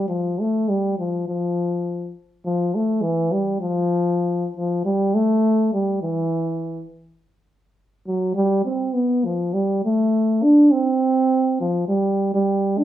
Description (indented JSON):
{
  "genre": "alpine folk",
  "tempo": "102 BPM",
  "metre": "2/4",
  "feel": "straight",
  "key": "F major",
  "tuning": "A4 = 440 Hz",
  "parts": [
    { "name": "mellow euphonium", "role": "solo", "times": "0.0-12.8 s", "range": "E3 to D4", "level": "-18 LUFS", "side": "equal", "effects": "none" }
  ],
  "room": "wet studio reverb, RT60 0.8 s",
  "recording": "band playing live in one room, faint mains hum",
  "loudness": "-18 LUFS",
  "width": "side -12 dB against mid",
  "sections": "0.0-4.8 A section; 4.8-12.8 B section",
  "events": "none",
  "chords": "none",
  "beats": "| 0.08 0.68 | 1.27 1.86 | 2.45 3.04 | 3.63 4.23 | 4.82 5.42 | 6.01 6.60 | 7.18 7.76 | 8.35 8.94 | 9.53 10.13 | 10.72 11.31 | 11.90 12.48"
}